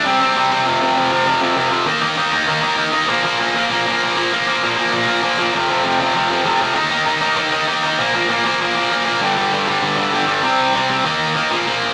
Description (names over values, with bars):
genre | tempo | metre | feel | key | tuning
punk | 196 BPM | 4/4 | straight | unclear | A4 = 440 Hz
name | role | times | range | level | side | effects
tight distorted guitar | solo | 0.0-11.9 s | F2 to Eb4 | -16 LUFS | equal | distortion
room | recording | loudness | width
moderate studio reverb, RT60 0.5 s | rough rehearsal-room recording, tube saturation | -16 LUFS | mono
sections
0.7-10.4 A section; 10.4-11.9 B section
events
none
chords
0.0 C5; 0.7 F5; 1.9 Eb5; 3.1 Bb5; 5.5 F5; 6.8 Eb5; 8.0 Bb5; 9.2 G5; 10.4 C5; 11.1 Eb5